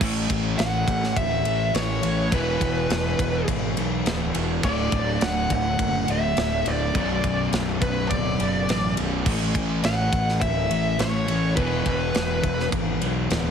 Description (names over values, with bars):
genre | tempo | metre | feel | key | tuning
hard rock | 104 BPM | 4/4 | straight | unclear | A4 = 441 Hz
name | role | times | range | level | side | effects
distorted electric guitar | riff | 0.0-13.5 s | B1 to A3 | -33 LUFS | equal | none
overdriven semi-hollow guitar | riff | 0.0-13.5 s | B1 to A3 | -28 LUFS | left 9 dB | none
overdriven semi-hollow guitar | riff | 0.0-13.5 s | B1 to A3 | -29 LUFS | right 9 dB | spring reverb
fuzz fingered electric bass | bass | 0.0-13.5 s | B0 to B1 | -28 LUFS | equal | overdrive
tight metal drum kit | drums | 0.0-13.4 s | crash cymbal, kick drum, ride cymbal, snare drum | -28 LUFS | equal | none
dark smooth lead guitar | melody | 0.6-12.7 s | B4 to F#5 | -27 LUFS | equal | overdrive, analog delay
room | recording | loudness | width
light reverb, studio ambience | heavily compressed radio sound, multiband compression | -21 LUFS | side -7 dB against mid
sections
0.0-13.5 A section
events
none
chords
0.0 A; 2.3 E5; 4.6 D; 7.0 Bm; 9.3 A; 11.6 E